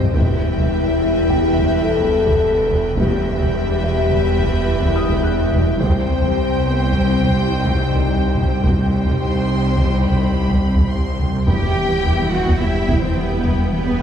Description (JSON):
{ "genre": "cinematic, hybrid orchestral and electronic film score", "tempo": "106 BPM", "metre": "5/4", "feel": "straight", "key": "E harmonic minor", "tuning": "A4 = 439 Hz", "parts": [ { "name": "rich studio violin section", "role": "melody", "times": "0.0-14.0 s", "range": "G5 to C6", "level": "-32 LUFS", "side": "left 1 dB", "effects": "none" }, { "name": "warm symphonic violin section", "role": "second line", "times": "0.0-14.0 s", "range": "B4 to G5", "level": "-28 LUFS", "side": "left 1 dB", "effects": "none" }, { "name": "dark symphonic viola section", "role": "accompaniment", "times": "0.0-14.0 s", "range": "B3 to C5", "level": "-29 LUFS", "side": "right 2 dB", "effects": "none" }, { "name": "airy breathy pad", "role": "sustained chords", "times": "0.0-14.0 s", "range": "G3 to G5", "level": "-27 LUFS", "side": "equal", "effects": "chorus" }, { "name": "dark French horn section", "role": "sustained chords", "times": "0.0-14.0 s", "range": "B3 to A4", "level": "-22 LUFS", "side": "left 3 dB", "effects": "none" }, { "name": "rich studio double bass section", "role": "bass", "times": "0.0-13.9 s", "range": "E1 to E2", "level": "-24 LUFS", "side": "right 2 dB", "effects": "none" }, { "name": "rich symphonic cello section", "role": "bass", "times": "0.0-14.0 s", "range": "C2 to G4", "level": "-24 LUFS", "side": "right 1 dB", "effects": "none" }, { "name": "wide detuned saw bass", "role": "bass", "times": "0.0-14.0 s", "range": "E1 to C2", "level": "-25 LUFS", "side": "equal", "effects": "chorus" }, { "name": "taiko ensemble", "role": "drums", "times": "0.0-14.0 s", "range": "none", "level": "-21 LUFS", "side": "equal", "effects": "none" }, { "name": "felt-muted upright piano", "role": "texture", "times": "0.0-14.0 s", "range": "B4 to F#6", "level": "-33 LUFS", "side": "left 1 dB", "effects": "ping-pong delay" }, { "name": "round analog bass", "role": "riff", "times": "11.5-13.9 s", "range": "E2 to E3", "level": "-23 LUFS", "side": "left 1 dB", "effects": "none" } ], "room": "wet scoring stage reverb, RT60 1.9 s", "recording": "heard from further back in the room", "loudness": "-15 LUFS", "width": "side -8 dB against mid", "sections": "0.0-11.5 A section; 11.5-14.0 B section", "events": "none", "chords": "0.1 Em; 5.8 Cm; 11.5 Em" }